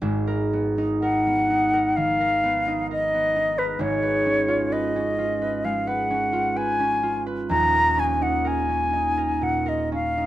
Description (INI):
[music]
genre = classical, impressionist duo for flute and harp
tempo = 58-67 BPM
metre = 4/4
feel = rubato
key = G# dorian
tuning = A4 = 442 Hz
[part]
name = concert harp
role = accompaniment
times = 0.0-10.3 s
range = D#1 to B4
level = -24 LUFS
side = right 1 dB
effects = none
[part]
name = concert flute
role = melody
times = 1.0-10.3 s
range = B4 to A#5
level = -22 LUFS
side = left 1 dB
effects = none
[sound]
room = light reverb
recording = dark, warm production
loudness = -20 LUFS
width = side -14 dB against mid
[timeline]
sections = 0.0-10.3 A section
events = none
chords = 0.0 G#m9; 3.8 C#9/G#; 7.5 D#7sus4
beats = | 0.02 1.01 1.96 2.90 | 3.81 4.72 5.63 6.56 | 7.50 8.45 9.42